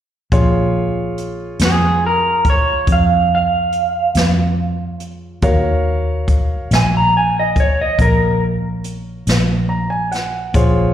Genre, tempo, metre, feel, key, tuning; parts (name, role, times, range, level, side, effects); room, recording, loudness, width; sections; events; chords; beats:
slow blues; 47 BPM (dotted quarters); 12/8; straight; Bb minor; A4 = 440 Hz
clear concert grand piano; accompaniment; 0.3-10.9 s; F4 to C6; -23 LUFS; equal; slapback echo
vintage muted fingered electric bass; bass; 0.3-10.9 s; Bb1 to F2; -18 LUFS; equal
jazz brush drum kit; drums; 0.3-10.7 s; hi-hat, kick drum, snare drum; -18 LUFS; equal
electric guitar through a small old amp; melody; 1.7-8.4 s; Ab4 to Bb5; -16 LUFS; right 2 dB; wide subtle chorus, slapback echo
light reverb; live gig heard through the venue's PA, recital hall reverb; -14 LUFS; side -10 dB against mid
0.3-10.9 A section
grand piano fill 9.3-10.5
0.3 Bbm7; 5.4 Ebm7
| 0.32 1.60 2.88 4.16 | 5.43 6.71 7.99 9.26 | 10.54